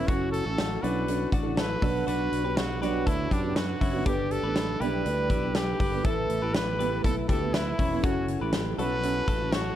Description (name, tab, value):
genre	jangly indie pop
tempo	121 BPM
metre	4/4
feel	straight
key	unclear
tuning	A4 = 440 Hz
part	breathy trumpet	melody	0.0-9.8 s	D4 to B4	-32 LUFS	equal	plate reverb
part	fingerpicked twelve-string acoustic guitar	accompaniment	0.0-9.8 s	B2 to C#5	-32 LUFS	right 6 dB	plate reverb
part	twelve-string electric guitar	arpeggios	0.0-9.8 s	C#4 to C#5	-34 LUFS	left 4 dB	spring reverb, plate reverb
part	fingered electric bass	bass	0.0-9.7 s	E1 to F#2	-32 LUFS	equal	none
part	big rock drum kit	drums	0.1-9.6 s	hi-hat, kick drum, snare drum	-29 LUFS	equal	none
part	clear upright piano	accompaniment	4.1-9.8 s	E4 to B4	-39 LUFS	left 7 dB	none
room	light reverb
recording	none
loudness	-24 LUFS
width	side -11 dB against mid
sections	0.0-9.8 A section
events	none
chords	0.1 F#m7; 1.8 Bmadd9; 4.1 Gadd9; 6.0 Asus2; 8.0 F#m7